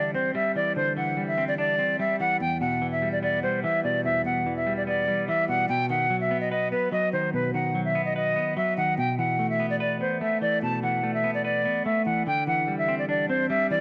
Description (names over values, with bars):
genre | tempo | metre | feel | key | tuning
hip hop | 146 BPM | 4/4 | half-time | unclear | A4 = 441 Hz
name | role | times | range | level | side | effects
breathy silver concert flute | melody | 0.0-13.8 s | B4 to A5 | -27 LUFS | equal | low-pass filter
semi-hollow electric guitar | accompaniment | 0.0-13.8 s | E2 to B4 | -31 LUFS | equal | low-pass filter
room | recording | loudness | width
moderate lush hall reverb, RT60 2.9 s | dark, warm production | -26 LUFS | mono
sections
0.0-12.3 A section; 12.3-13.8 B section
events
none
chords
0.0 Cadd9; 2.4 Em; 5.7 B; 9.0 Asus2; 12.3 Cadd9